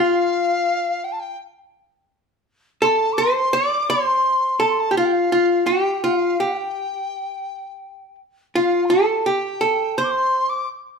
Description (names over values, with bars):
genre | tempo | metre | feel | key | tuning
mongolian traditional, Mongolian folk | 84 BPM | 4/4 | straight | F gong mode | A4 = 440 Hz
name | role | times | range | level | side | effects
archtop guitar, miked and amplified | melody | 0.0-10.7 s | F4 to D5 | -19 LUFS | equal | none
large dizi | second line | 0.0-10.7 s | F5 to D6 | -22 LUFS | left 2 dB | none
room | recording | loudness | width
wet large studio reverb, RT60 1.1 s | band playing live in one room | -17 LUFS | side -5 dB against mid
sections
0.0-11.0 A section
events
none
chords
none